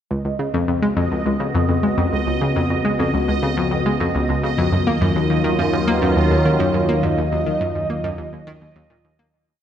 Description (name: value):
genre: ambient, sequencer-driven space music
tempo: 104 BPM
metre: 4/4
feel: straight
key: Eb minor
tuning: A4 = 438 Hz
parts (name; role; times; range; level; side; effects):
- sweeping resonant pad; sustained chords; 0.1-9.3 s; Db2 to Gb4; -21 LUFS; equal; chorus
- analog pluck; riff; 0.1-9.2 s; Db2 to Bb3; -20 LUFS; left 1 dB; chorus, analog delay
- bubbling stepped-filter texture; texture; 0.1-9.3 s; Eb5; -28 LUFS; right 6 dB; chorus, built-in reverb
- soft octave-layered synth lead; melody; 4.7-8.8 s; Bb4 to Eb5; -25 LUFS; equal; chorus, tremolo, analog delay
room: moderate plate reverb, RT60 3.6 s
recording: dreamy mix soaked in reverb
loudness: -17 LUFS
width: side -9 dB against mid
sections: 0.1-9.3 A section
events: fade-in on analog synth pad 0.1-9.3; fade-out 6.3-9.3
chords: 0.1 Db7sus4; 4.7 Ebmadd9